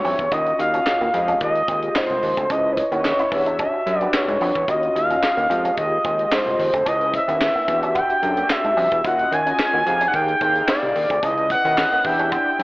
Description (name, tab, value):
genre	early-eighties boogie funk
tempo	110 BPM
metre	4/4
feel	straight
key	unclear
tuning	A4 = 443 Hz
part	expressive synth lead	melody	0.0-12.6 s	C5 to Ab5	-19 LUFS	equal	chorus, tape echo
part	mellow synth brass	accompaniment	0.0-12.6 s	Ab3 to F5	-26 LUFS	left 1 dB	chorus
part	electric guitar with an envelope filter	riff	0.0-12.5 s	G3 to Fb4	-29 LUFS	right 1 dB	analog chorus
part	fat analog bass	bass	0.0-12.6 s	C2 to Ab2	-27 LUFS	equal	none
part	tight funk drum kit	drums	0.0-12.6 s	handclaps, hi-hat, kick drum, snare drum	-26 LUFS	equal	none
room	wet plate reverb, RT60 1.6 s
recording	dreamy mix soaked in reverb, telephone sound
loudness	-17 LUFS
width	side -21 dB against mid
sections	0.0-12.6 A section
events	none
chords	0.3 Ebm9; 1.1 Fm9; 2.5 Dbm9; 3.3 Em9; 4.7 Ebm9; 5.5 Fm9; 6.9 Dbm9; 7.7 Em9; 9.0 Ebm9; 9.9 Fm9; 11.2 Dbm9; 12.0 Em7